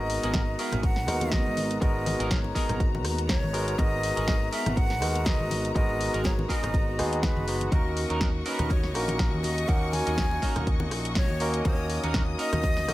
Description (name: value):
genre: nu-disco, nu disco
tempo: 122 BPM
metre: 4/4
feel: swing 55% on 16ths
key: G# minor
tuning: A4 = 440 Hz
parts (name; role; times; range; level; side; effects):
- breathy jazz flute; melody; 0.0-12.9 s; A#4 to G#5; -33 LUFS; equal; dub echo
- barky tine electric piano; accompaniment; 0.0-12.9 s; G#3 to B4; -32 LUFS; equal; sidechain pumping
- clear symphonic string section; sustained chords; 0.0-12.9 s; B3 to D#6; -35 LUFS; left 1 dB; sidechain pumping
- twangy electric guitar; riff; 0.0-12.9 s; B3 to A#4; -36 LUFS; right 2 dB; lush chorus
- modern bright picked electric bass; bass; 0.0-12.9 s; F#1 to D#2; -31 LUFS; equal; none
- house drum kit; drums; 0.1-12.9 s; hi-hat, rim click, snare drum; -34 LUFS; equal; none
- electronic kick drum; drums; 0.3-12.7 s; none; -26 LUFS; equal; none
- congas; percussion; 0.3-12.9 s; none; -35 LUFS; left 1 dB; none
room: little or no reverb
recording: none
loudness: -24 LUFS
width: side -16 dB against mid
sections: 0.0-12.9 A section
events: none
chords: 0.0 G#m9; 7.7 D#m7